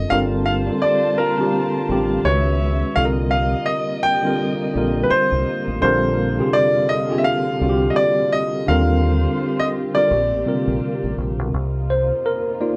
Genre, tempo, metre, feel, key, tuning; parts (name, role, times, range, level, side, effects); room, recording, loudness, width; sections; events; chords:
R&B; 84 BPM; 4/4; swing 58% on 16ths; C dorian; A4 = 440 Hz
clear concert grand piano; melody; 0.0-11.1 s; Bb4 to G5; -22 LUFS; equal
tine electric piano; accompaniment; 0.0-12.8 s; C3 to D5; -24 LUFS; equal; overdrive
deep dub fingered electric bass; bass; 0.0-12.1 s; G1 to Eb2; -24 LUFS; equal
dark studio string section; sustained chords; 0.1-12.8 s; C3 to A5; -31 LUFS; equal
light reverb; band playing live in one room, nothing above 10.7 kHz; -19 LUFS; mono
0.0-11.5 A section; 11.5-12.8 B section
tine electric piano solo 11.5-12.8
0.1 Gm11; 2.2 Dbm7; 3.0 Cm7; 5.8 Bb13; 8.7 Ebmaj13; 10.1 Bb6; 11.5 Cm11